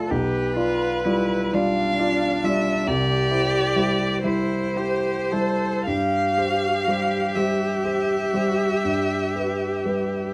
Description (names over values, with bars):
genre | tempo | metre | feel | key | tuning
classical, slow romantic movement for piano trio | 35-47 BPM (dotted quarters) | 12/8 | rubato | C major | A4 = 438 Hz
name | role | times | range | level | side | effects
rich cello | second line | 0.0-10.3 s | D4 to A4 | -28 LUFS | equal | none
warm grand piano | accompaniment | 0.0-10.3 s | B1 to D5 | -27 LUFS | equal | none
warm violin | melody | 0.1-10.3 s | B4 to F5 | -28 LUFS | equal | none
room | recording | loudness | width
light reverb | none | -23 LUFS | mono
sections
0.0-10.3 A section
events
none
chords
0.1 G7/B; 2.9 C; 5.9 C/G; 8.8 G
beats
| 0.10 1.53 2.87 4.24 | 5.86 7.35 8.84 10.33